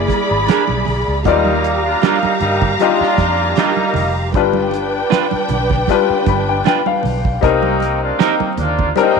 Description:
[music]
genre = lush 1970s-style soul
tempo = 78 BPM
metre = 4/4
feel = swing 54% on 16ths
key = unclear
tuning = A4 = 439 Hz
[part]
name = warm symphonic string section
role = second line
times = 0.0-9.2 s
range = D4 to B5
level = -19 LUFS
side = right 1 dB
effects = none
[part]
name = warm baby grand piano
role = accompaniment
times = 0.0-9.2 s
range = F#3 to B5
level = -19 LUFS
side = left 11 dB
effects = none
[part]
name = vintage muted fingered electric bass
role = bass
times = 0.0-9.2 s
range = F1 to G2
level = -21 LUFS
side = right 1 dB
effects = none
[part]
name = cloth-damped thuddy drum kit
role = drums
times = 0.1-9.2 s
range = hi-hat, kick drum, snare drum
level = -19 LUFS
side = right 4 dB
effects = none
[part]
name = congas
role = percussion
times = 0.1-9.2 s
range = none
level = -26 LUFS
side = right 13 dB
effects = none
[part]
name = electric guitar at the edge of break-up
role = riff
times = 0.5-8.3 s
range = G3 to B4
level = -21 LUFS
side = right 14 dB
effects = none
[part]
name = clear horn section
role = stabs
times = 1.3-9.2 s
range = G3 to F4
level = -19 LUFS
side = equal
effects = slapback echo
[sound]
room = moderate echo chamber reverb, RT60 2.2 s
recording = 1960s-style stereo with parts hard left and right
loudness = -13 LUFS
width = side -5 dB against mid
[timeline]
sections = 0.0-9.2 A section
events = grand piano fill 5.9-7.4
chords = 0.0 E7#11; 1.3 Ebmaj9; 4.3 G7; 7.4 Cm7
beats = 0.49 | 1.26 2.03 2.80 3.57 | 4.34 5.11 5.88 6.65 | 7.42 8.20 8.97

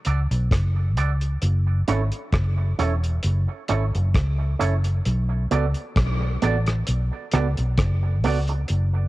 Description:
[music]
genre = dub reggae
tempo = 66 BPM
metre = 4/4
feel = swing 55% on 16ths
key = unclear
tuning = A4 = 440 Hz
[part]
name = cloth-damped thuddy drum kit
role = drums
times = 0.0-8.9 s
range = hi-hat, kick drum, rim click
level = -25 LUFS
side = equal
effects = cassette tape
[part]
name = electric guitar with an envelope filter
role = accompaniment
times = 0.1-8.5 s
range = B3 to D5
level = -28 LUFS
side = right 6 dB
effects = high-pass filter, cassette tape, dub echo
[part]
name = vintage muted fingered electric bass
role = bass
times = 0.1-9.1 s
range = E1 to C#2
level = -21 LUFS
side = equal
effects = none
[sound]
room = small room ambience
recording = home recording on cassette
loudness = -20 LUFS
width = side -18 dB against mid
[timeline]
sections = 0.0-9.1 A section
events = filter sweep on clean electric guitar 0.0-1.4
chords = 0.0 Bm7; 1.4 F#m7; 5.1 Bm7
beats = 0.51 | 1.42 2.33 3.23 4.14 | 5.05 5.96 6.87 7.78 | 8.69

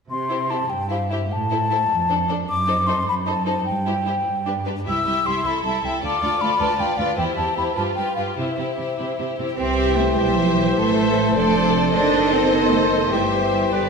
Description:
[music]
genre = quick classical-period movement for symphony orchestra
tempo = 101 BPM (dotted quarters)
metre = 6/8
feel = rubato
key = C major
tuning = A4 = 440 Hz
[part]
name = mellow silver concert flute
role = second line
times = 0.1-13.9 s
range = E5 to E6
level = -23 LUFS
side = left 2 dB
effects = none
[part]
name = rich studio cello section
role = bass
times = 0.1-13.9 s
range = C2 to D4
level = -24 LUFS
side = right 3 dB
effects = none
[part]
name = warm studio violin section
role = melody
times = 0.3-13.9 s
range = B4 to E5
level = -30 LUFS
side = left 4 dB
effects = none
[part]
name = rich studio violin section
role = second line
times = 0.3-13.9 s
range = G4 to C5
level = -29 LUFS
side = left 3 dB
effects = none
[part]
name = clear studio viola section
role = accompaniment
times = 0.3-13.9 s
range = D4 to A4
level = -27 LUFS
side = equal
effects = none
[part]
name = warm oboe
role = second line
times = 9.6-13.9 s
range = B4 to C5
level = -27 LUFS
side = left 1 dB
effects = none
[part]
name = mellow bassoon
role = accompaniment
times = 9.6-13.9 s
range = D3 to E3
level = -27 LUFS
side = equal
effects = none
[part]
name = mellow French horn section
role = sustained chords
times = 9.6-13.9 s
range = D4 to C5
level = -25 LUFS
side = left 3 dB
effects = none
[part]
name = warm studio double bass section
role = bass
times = 9.6-13.9 s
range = F1 to C2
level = -25 LUFS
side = right 2 dB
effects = none
[sound]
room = wet scoring stage reverb, RT60 1.4 s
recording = none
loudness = -18 LUFS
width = side -5 dB against mid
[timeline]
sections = 0.1-9.6 A section; 9.6-13.9 A section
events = none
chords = 0.1 C; 1.3 Am; 1.9 Dm7/F; 2.5 F#dim7; 3.7 C/G; 4.3 G; 4.9 C; 6.0 Dm; 7.2 C/E; 7.8 G7; 8.4 C; 10.8 Am; 11.4 Dm7/F; 11.9 F#dim7; 13.1 C/G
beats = | 0.10 0.70 | 1.31 1.90 | 2.49 3.07 | 3.66 4.27 | 4.86 5.45 | 6.03 6.59 | 7.17 7.76 | 8.36 8.97 | 9.58 10.18 | 10.78 11.36 | 11.93 12.52 | 13.12 13.73

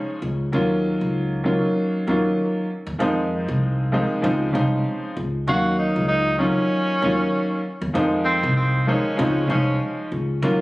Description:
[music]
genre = hip hop, boom-bap hip-hop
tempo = 97 BPM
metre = 4/4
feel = swing 56% on 16ths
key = Eb dorian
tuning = A4 = 440 Hz
[part]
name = clear upright piano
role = accompaniment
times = 0.0-10.6 s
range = Db3 to F5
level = -22 LUFS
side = equal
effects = cassette tape, high-pass filter, low-pass filter
[part]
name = upright bass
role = bass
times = 0.2-10.6 s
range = C2 to F2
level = -24 LUFS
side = equal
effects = none
[part]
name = bright tenor saxophone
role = melody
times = 5.5-9.8 s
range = C4 to Gb4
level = -24 LUFS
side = right 1 dB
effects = high-pass filter, low-pass filter, digital delay
[sound]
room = light reverb, small room ambience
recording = recorded on a phone in the room, studio reverb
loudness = -19 LUFS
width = side -20 dB against mid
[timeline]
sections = 0.0-10.6 A section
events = none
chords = 0.0 Dbmaj7; 0.5 Ebm7; 3.0 Fm7; 4.2 Dbmaj7; 5.5 Ebm7; 7.9 Fm7; 9.2 Dbmaj7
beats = | 0.52 1.14 1.76 2.38 | 3.00 3.62 4.24 4.85 | 5.47 6.09 6.71 7.33 | 7.95 8.57 9.18 9.80 | 10.42

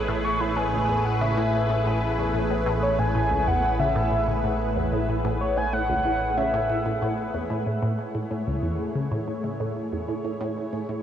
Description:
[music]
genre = ambient, sequencer-driven space music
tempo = 93 BPM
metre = 4/4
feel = straight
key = A major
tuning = A4 = 443 Hz
[part]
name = lush unison pad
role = sustained chords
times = 0.0-11.0 s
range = A3 to C#5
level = -29 LUFS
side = equal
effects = chorus, phaser
[part]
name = resonant blip pluck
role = riff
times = 0.0-11.0 s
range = C#2 to C#3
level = -28 LUFS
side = equal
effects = phaser, tape echo
[part]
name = fat analog bass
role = bass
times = 0.0-7.6 s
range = A1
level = -29 LUFS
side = equal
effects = tube saturation
[part]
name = pulse-width lead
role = melody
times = 0.2-7.3 s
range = C#5 to C#6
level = -27 LUFS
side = equal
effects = chorus, tape echo
[sound]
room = wet huge ambient reverb, RT60 7.7 s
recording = worn, warbling old tape, cassette tape, warbly pitch drift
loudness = -22 LUFS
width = side -9 dB against mid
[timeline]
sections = 0.0-7.7 A section; 7.7-11.0 B section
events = none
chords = 0.0 Amaj7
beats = 0.57 1.21 1.86 | 2.50 3.15 3.79 4.44 | 5.08 5.73 6.37 7.02 | 7.66 8.31 8.95 9.60 | 10.24 10.89

